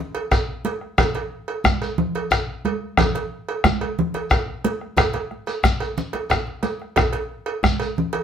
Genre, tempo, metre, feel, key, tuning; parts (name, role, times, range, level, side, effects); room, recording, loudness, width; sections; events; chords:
west african traditional, West African drum ensemble; 120 BPM (dotted quarters); 12/8; straight
cowbell; percussion; 0.1-8.2 s; -26 LUFS; right 4 dB
djembe; percussion; 0.1-8.2 s; -29 LUFS; left 3 dB
bombo; percussion; 0.3-7.8 s; -20 LUFS; left 1 dB
shekere; percussion; 0.3-7.9 s; -31 LUFS; left 1 dB
congas; percussion; 0.6-8.1 s; -25 LUFS; right 2 dB
moderate studio reverb, RT60 0.7 s; band playing live in one room; -20 LUFS; side -8 dB against mid
0.0-8.2 A section